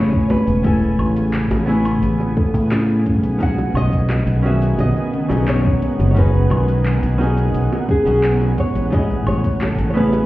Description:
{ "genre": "sunset chillout", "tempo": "87 BPM", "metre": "4/4", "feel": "straight", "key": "B mixolydian", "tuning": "A4 = 440 Hz", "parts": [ { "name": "nylon-string guitar", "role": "melody", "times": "0.0-10.3 s", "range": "G#4 to F#5", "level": "-24 LUFS", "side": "right 1 dB", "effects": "tape echo" }, { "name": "archtop guitar, miked and amplified", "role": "accompaniment", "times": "0.0-10.3 s", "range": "D#3 to G#5", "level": "-27 LUFS", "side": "equal", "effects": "auto-pan, digital delay" }, { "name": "shimmering ambient pad", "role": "sustained chords", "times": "0.0-10.3 s", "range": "C#3 to G#5", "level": "-26 LUFS", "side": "right 1 dB", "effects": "chorus, built-in reverb" }, { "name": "kalimba", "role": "arpeggios", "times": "0.0-10.3 s", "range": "G#3 to A4", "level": "-22 LUFS", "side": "left 1 dB", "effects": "digital delay" }, { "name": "fingered electric bass", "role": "bass", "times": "0.0-10.2 s", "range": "E1 to A2", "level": "-18 LUFS", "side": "equal", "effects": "none" }, { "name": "deep house drum kit", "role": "drums", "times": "0.1-10.3 s", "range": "handclaps, hi-hat, shaker, woodblock", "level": "-32 LUFS", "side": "equal", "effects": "overdrive, studio reverb" }, { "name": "electronic kick drum", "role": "drums", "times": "0.1-9.6 s", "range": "none", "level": "-20 LUFS", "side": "equal", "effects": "overdrive, studio reverb" }, { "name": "bongos", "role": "percussion", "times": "0.3-10.3 s", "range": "none", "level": "-27 LUFS", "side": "equal", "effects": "none" }, { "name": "wind-like tuned noise texture", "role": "texture", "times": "4.4-10.3 s", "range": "F#5", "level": "-37 LUFS", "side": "right 3 dB", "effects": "built-in reverb" } ], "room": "light reverb, digital ambience", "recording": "heard muffled through a wall, stone room reverb, EQ", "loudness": "-15 LUFS", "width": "side -17 dB against mid", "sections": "0.0-10.3 A section", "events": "none", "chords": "0.0 Amaj7; 3.4 B69; 8.6 Amaj7", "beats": "| 0.65 1.34 2.03 2.72 | 3.41 4.09 4.79 5.47 | 6.16 6.85 7.54 8.23 | 8.92 9.61" }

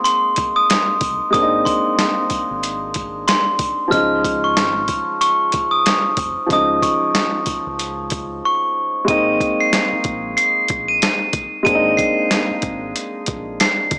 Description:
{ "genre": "hip hop, boom-bap hip-hop", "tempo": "93 BPM", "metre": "4/4", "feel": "swing 59% on 16ths", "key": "Ab major", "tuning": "A4 = 439 Hz", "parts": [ { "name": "glockenspiel with brass mallets", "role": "melody", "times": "0.0-13.9 s", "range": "C6 to Eb7", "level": "-20 LUFS", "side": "equal", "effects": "high-pass filter, low-pass filter" }, { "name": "warm upright piano", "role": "accompaniment", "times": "0.0-14.0 s", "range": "F3 to Eb4", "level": "-25 LUFS", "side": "equal", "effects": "high-pass filter, low-pass filter" }, { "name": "sleigh bells", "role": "percussion", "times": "0.0-8.3 s", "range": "none", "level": "-36 LUFS", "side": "equal", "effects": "none" }, { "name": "boom bap sampler-style drum kit", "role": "drums", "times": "0.1-14.0 s", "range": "hi-hat, kick drum, snare drum", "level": "-24 LUFS", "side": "equal", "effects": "none" }, { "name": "deep dub fingered electric bass", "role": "bass", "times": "1.0-14.0 s", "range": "F1 to D2", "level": "-36 LUFS", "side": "equal", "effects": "none" } ], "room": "light reverb, studio ambience", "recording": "small speaker sound", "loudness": "-18 LUFS", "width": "mono", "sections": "0.0-9.1 A section; 9.1-14.0 B section", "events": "none", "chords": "0.0 Abadd9; 3.9 Dbadd9; 9.1 Abadd9", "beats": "0.05 0.69 | 1.34 1.99 2.63 3.27 | 3.92 4.57 5.21 5.86 | 6.50 7.15 7.79 8.44 | 9.08 9.73 10.37 11.02 | 11.66 12.31 12.95 13.60" }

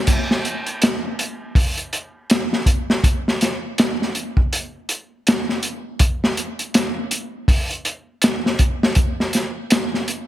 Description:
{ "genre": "trip hop", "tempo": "81 BPM", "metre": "4/4", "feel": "swing 59% on 16ths", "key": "none", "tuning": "none", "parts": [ { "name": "crunchy breakbeat drum kit", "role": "drums", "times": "0.1-10.3 s", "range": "crash cymbal, hi-hat, kick drum, snare drum", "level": "-18 LUFS", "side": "equal", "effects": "gated reverb" } ], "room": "light reverb", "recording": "bright 1980s-style digital production", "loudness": "-18 LUFS", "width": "side -14 dB against mid", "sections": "0.1-10.3 A section", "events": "none", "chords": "none", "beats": "| 0.08 0.82 1.56 2.30 | 3.04 3.78 4.52 5.26 | 6.00 6.75 7.49 8.23 | 8.97 9.71" }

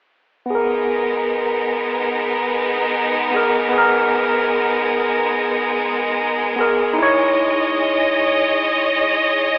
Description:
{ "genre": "trip hop", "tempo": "74 BPM", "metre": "4/4", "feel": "swing 60% on 16ths", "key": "G# minor", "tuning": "A4 = 440 Hz", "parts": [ { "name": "overdriven tine electric piano", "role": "accompaniment", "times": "0.5-9.6 s", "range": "B3 to C#5", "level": "-21 LUFS", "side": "equal", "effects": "harmonic tremolo, vintage 12-bit sampler grit, low-pass filter, tape echo" }, { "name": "bright symphonic violin section", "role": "sustained chords", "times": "0.5-9.6 s", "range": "G#3 to D#5", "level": "-21 LUFS", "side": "equal", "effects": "none" } ], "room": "moderate plate reverb, RT60 3.5 s", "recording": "telephone sound", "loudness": "-18 LUFS", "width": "mono", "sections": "0.5-9.6 A section", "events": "filter sweep on tine electric piano 0.5-9.6", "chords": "0.5 G#madd9; 7.0 C#madd9/G#", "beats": "| 0.49 1.30 2.12 2.93 | 3.74 4.55 5.36 6.17 | 6.98 7.79 8.60 9.41" }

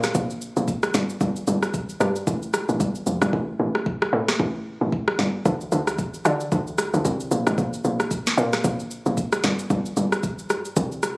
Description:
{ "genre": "amapiano", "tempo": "113 BPM", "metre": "4/4", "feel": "swing 58% on 16ths", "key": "unclear", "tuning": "A4 = 440 Hz", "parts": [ { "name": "tight log drum bass", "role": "bass", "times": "0.0-11.2 s", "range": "F1 to D3", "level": "-23 LUFS", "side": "equal", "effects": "none" }, { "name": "afro-pop drum kit", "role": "drums", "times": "0.0-11.2 s", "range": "kick drum, rim click, shaker, snare drum", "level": "-25 LUFS", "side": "equal", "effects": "none" } ], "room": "digital ambience", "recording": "recorded on a phone in the room, club reverb, compression", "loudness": "-21 LUFS", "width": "side -26 dB against mid", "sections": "0.0-11.2 A section", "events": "hi-hats muted 3.3-5.5", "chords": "none", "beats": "0.15 0.68 | 1.21 1.74 2.27 2.80 | 3.33 3.86 4.39 4.92 | 5.46 5.99 6.52 7.05 | 7.58 8.11 8.64 9.17 | 9.70 10.23 10.77" }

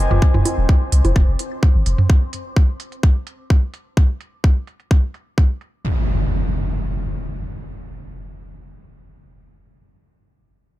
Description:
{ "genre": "minimal techno", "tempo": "128 BPM", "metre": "4/4", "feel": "straight", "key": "F minor", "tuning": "A4 = 440 Hz", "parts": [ { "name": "punchy sub bass", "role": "bass", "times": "0.0-1.9 s", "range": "Eb1 to C2", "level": "-17 LUFS", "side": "equal", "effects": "sidechain pumping" }, { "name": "impact", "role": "sound effects", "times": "0.0-0.2, 5.8-9.4 s", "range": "none", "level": "-24 LUFS", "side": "equal", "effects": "none" }, { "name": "bubbling stepped-filter texture", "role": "texture", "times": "0.0-2.1 s", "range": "C4 to C5", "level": "-30 LUFS", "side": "left 1 dB", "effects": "chorus, built-in reverb, sidechain pumping" }, { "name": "electronic toms, bongos and claves", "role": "percussion", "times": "0.1-2.1 s", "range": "none", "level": "-20 LUFS", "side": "right 2 dB", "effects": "none" }, { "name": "electronic kick drum", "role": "drums", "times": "0.2-5.5 s", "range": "none", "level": "-13 LUFS", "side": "equal", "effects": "overdrive" }, { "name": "electronic hi-hat", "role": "drums", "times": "0.5-5.7 s", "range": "none", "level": "-28 LUFS", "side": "right 5 dB", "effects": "overdrive, low-pass filter on snare, low-pass filter on perc, low-pass filter on hats, low-pass filter on room" } ], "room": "digital ambience", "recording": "none", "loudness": "-16 LUFS", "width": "side -16 dB against mid", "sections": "0.0-5.8 A section; 5.8-9.6 B section", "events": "impact 0.0; filter sweep on drum 0.0-5.8", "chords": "0.0 F5; 5.8 N.C.", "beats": "| 0.22 0.69 1.16 1.63 | 2.10 2.56 3.03 3.50 | 3.97 4.44 4.91 5.38 | 5.85 6.32 6.78 7.25 | 7.72 8.19 8.66 9.13" }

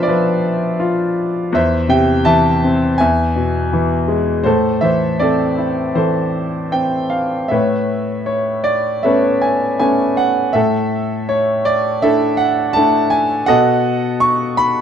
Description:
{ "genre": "classical, lyrical solo piano", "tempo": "81 BPM", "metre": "4/4", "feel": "rubato", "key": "A minor, A major from 7.5 s", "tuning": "A4 = 440 Hz", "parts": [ { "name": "bright grand piano", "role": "solo", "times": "0.0-14.8 s", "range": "E2 to C#6", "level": "-14 LUFS", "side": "equal", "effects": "none" } ], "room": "light reverb", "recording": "dark, warm production", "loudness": "-14 LUFS", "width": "side -8 dB against mid", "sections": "0.0-7.5 A section; 7.5-14.8 B section", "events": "none", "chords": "0.0 Bdim; 1.5 Am/E; 3.0 E; 4.5 Am; 7.5 Aadd9; 10.5 Dsus2/A; 13.5 B7", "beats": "0.07 0.81 | 1.53 2.27 3.00 3.73 | 4.46 5.21 5.96 6.75 | 7.52 8.29 9.06 9.81 | 10.55 11.29 12.03 12.76 | 13.49 14.22" }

